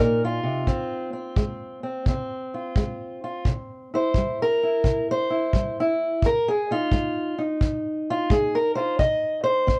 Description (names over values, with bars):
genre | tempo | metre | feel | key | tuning
acoustic country blues, solo or duo | 86 BPM | 4/4 | swing 66% on 8ths | F minor | A4 = 440 Hz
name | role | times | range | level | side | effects
fingerpicked steel-string acoustic guitar | melody | 0.0-9.8 s | F2 to Eb5 | -25 LUFS | equal | none
kick drum | drums | 0.7-9.8 s | none | -27 LUFS | equal | none
room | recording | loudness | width
moderate booth ambience, RT60 0.2 s | worn, warbling old tape, cassette tape, warbly pitch drift | -24 LUFS | mono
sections
0.0-9.8 A section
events
steel-string acoustic guitar solo 0.0-9.8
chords
0.0 F7(no3); 0.7 Dbmaj7; 3.4 C7; 6.2 Fm7; 9.0 N.C.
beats
| 0.66 1.36 2.06 2.75 | 3.45 4.14 4.83 5.53 | 6.22 6.92 7.61 8.30 | 8.99 9.68